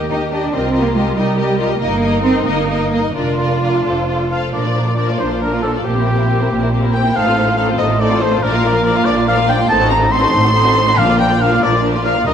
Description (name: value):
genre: classical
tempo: 93 BPM (dotted quarters)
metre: 6/8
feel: rubato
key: Bb major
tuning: A4 = 439 Hz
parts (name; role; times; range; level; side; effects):
- warm symphonic violin section; melody; 0.0-12.3 s; G4 to C6; -22 LUFS; left 4 dB; none
- warm symphonic violin section; second line; 0.0-12.3 s; D4 to F5; -21 LUFS; left 4 dB; none
- warm symphonic viola section; accompaniment; 0.0-12.3 s; F3 to G4; -21 LUFS; equal; none
- warm symphonic double bass section; bass; 0.0-12.3 s; F1 to Eb2; -20 LUFS; right 2 dB; none
- dark symphonic cello section; bass; 0.1-12.3 s; Eb2 to F4; -19 LUFS; right 2 dB; none
- warm oboe; second line; 4.3-12.3 s; G4 to C6; -18 LUFS; right 1 dB; none
- timpani; percussion; 11.0-11.6 s; Bb2; -25 LUFS; left 2 dB; none
room: moderate scoring stage reverb, RT60 1.6 s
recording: none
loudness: -13 LUFS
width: side -8 dB against mid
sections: 0.0-4.5 A section; 4.5-12.3 B section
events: none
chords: 0.0 Eb; 0.5 Cm7; 1.8 Eb/G; 3.2 Bb/F; 4.5 Bb; 5.9 C7/Bb; 7.2 F7/A; 8.4 Bb; 9.7 Adim7; 11.0 Bb